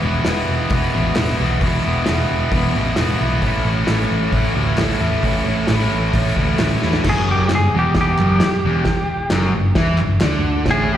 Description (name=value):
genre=garage rock duo or trio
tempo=132 BPM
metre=4/4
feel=straight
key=unclear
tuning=A4 = 440 Hz
part: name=overdriven electric guitar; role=riff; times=0.0-11.0 s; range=E2 to E4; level=-19 LUFS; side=equal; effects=slapback echo
part: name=hollow-body short-scale picked electric bass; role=bass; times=0.0-11.0 s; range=E1 to E2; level=-20 LUFS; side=equal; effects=none
part: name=vintage drum kit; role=drums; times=0.2-10.8 s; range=crash cymbal, hi-hat, kick drum, snare drum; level=-23 LUFS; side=equal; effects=none
part: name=group handclap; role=percussion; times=0.3-10.3 s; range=none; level=-31 LUFS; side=left 2 dB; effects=slapback echo
part: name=clean lap steel guitar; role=melody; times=7.1-11.0 s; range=G4 to G#4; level=-20 LUFS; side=equal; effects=slapback echo, digital delay
room=little or no reverb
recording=live gig heard through the venue's PA, recital hall reverb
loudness=-15 LUFS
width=side -11 dB against mid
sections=0.0-7.1 A section; 7.1-11.0 B section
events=drum fill 6.8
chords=0.0 E; 3.4 A; 7.1 G5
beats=0.26 0.71 1.17 | 1.62 2.07 2.53 2.98 | 3.44 3.89 4.34 4.79 | 5.25 5.70 6.15 6.61 | 7.06 7.51 7.96 8.42 | 8.87 9.32 9.77 10.22 | 10.68